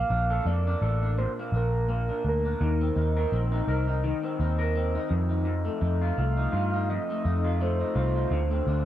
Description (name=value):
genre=indie pop, bedroom pop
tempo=84 BPM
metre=4/4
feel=swing 55% on 16ths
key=Bb major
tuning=A4 = 440 Hz
part: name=soft octave-layered synth lead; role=melody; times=0.0-8.8 s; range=Bb4 to F5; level=-31 LUFS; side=right 3 dB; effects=lush chorus, slapback echo
part: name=electric guitar through a small old amp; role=accompaniment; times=0.0-8.8 s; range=F2 to Bb4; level=-30 LUFS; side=left 2 dB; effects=lush chorus, warbly pitch drift
part: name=vintage muted picked electric bass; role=bass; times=0.0-8.8 s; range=A1 to G2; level=-26 LUFS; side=equal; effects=none
room=light reverb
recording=dark, warm production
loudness=-24 LUFS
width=side -12 dB against mid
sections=0.0-8.8 A section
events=none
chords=0.0 Bbmaj7; 2.6 Eb5; 5.1 F7; 8.3 Dm7